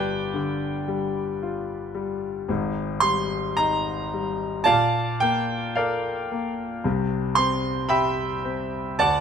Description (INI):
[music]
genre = classical, impressionist solo piano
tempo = 56 BPM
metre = 4/4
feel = rubato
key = unclear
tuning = A4 = 438 Hz
[part]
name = clear concert grand piano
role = solo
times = 0.0-9.2 s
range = G1 to C6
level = -22 LUFS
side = equal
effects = none
[sound]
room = light reverb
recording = close, detailed microphones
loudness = -22 LUFS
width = side -7 dB against mid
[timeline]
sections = 0.0-9.2 A section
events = none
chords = 0.0 G7; 2.5 Ab5; 4.7 Bbmaj7; 6.8 Cmaj7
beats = 0.36 1.42 | 2.49 3.59 4.69 5.78 | 6.84 7.91 8.98